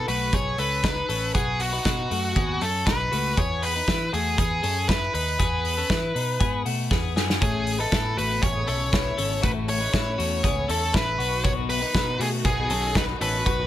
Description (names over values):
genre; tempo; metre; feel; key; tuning
jangly indie pop; 119 BPM; 4/4; straight; E major; A4 = 440 Hz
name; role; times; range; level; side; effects
biting lead guitar; melody; 0.0-13.7 s; F#4 to C#5; -26 LUFS; equal; overdrive, tape echo
twelve-string electric guitar; arpeggios; 0.0-13.7 s; A3 to B4; -30 LUFS; left 6 dB; wide subtle chorus
vintage muted picked electric bass; bass; 0.0-13.7 s; G#1 to E3; -29 LUFS; right 1 dB; none
loose indie drum kit; drums; 0.1-13.6 s; hi-hat, kick drum, snare drum; -26 LUFS; equal; none
warm studio string section; sustained chords; 7.4-13.7 s; B2 to F#4; -36 LUFS; equal; none
room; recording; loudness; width
light reverb; none; -22 LUFS; side -12 dB against mid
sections
0.0-13.7 A section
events
drum fill 6.9-7.4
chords
0.0 B; 3.4 E; 7.4 Aadd9; 11.2 B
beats
0.33 0.84 | 1.35 1.85 2.36 2.87 | 3.38 3.88 4.39 4.89 | 5.40 5.90 6.41 6.91 | 7.42 7.92 8.43 8.93 | 9.43 9.94 10.44 10.94 | 11.45 11.95 12.45 12.96 | 13.46